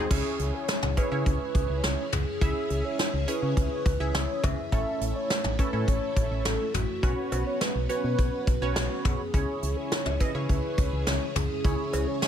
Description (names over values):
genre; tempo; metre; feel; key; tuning
synth-pop; 104 BPM; 4/4; straight; C# minor; A4 = 440 Hz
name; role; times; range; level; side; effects
hollow clarinet-like synth lead; melody; 0.0-12.3 s; F#4 to E5; -32 LUFS; equal; chorus, tape echo
funky polysynth comp; accompaniment; 0.0-12.3 s; C#4 to E5; -34 LUFS; right 1 dB; chorus
string machine, full ensemble; sustained chords; 0.0-12.3 s; C#3 to G#4; -36 LUFS; equal; ensemble chorus
solid FM bass; bass; 0.1-12.1 s; A1 to C#3; -30 LUFS; equal; none
soft brush drum kit; drums; 0.1-12.3 s; cowbell, crash cymbal, hi-hat, kick drum, snare drum, toms; -28 LUFS; equal; none
room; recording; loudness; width
studio reverb; none; -25 LUFS; side -9 dB against mid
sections
0.1-12.3 A section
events
none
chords
0.1 C#m; 4.7 A; 7.0 Bsus2; 9.3 C#m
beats
| 0.11 0.68 1.26 1.84 | 2.42 2.99 3.57 4.15 | 4.72 5.30 5.88 6.45 | 7.03 7.61 8.18 8.76 | 9.34 9.91 10.49 11.07 | 11.65 12.22